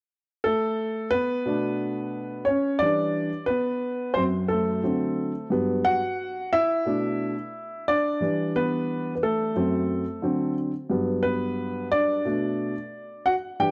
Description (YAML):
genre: hip hop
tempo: 89 BPM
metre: 4/4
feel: swing 59% on 16ths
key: unclear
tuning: A4 = 440 Hz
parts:
  - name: dark upright piano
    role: solo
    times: 0.4-13.7 s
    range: F#2 to G5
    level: -26 LUFS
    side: equal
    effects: none
room: light reverb, small room ambience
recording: none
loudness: -26 LUFS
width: mono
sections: 0.0-1.5 A section; 1.5-13.7 B section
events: upright piano solo 1.5-13.7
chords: 0.0 Asus2; 1.5 Bm7; 2.8 Em7; 4.2 F#m; 4.8 D7; 5.5 Gmaj7; 6.9 Bm7; 8.2 Em7; 9.6 F#dim; 10.2 D7; 10.9 Gmaj7; 12.3 Bm7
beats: 0.12 0.79 | 1.46 2.14 2.81 3.49 | 4.16 4.83 5.51 6.18 | 6.86 7.53 8.21 8.88 | 9.55 10.23 10.90 11.58 | 12.25 12.93 13.60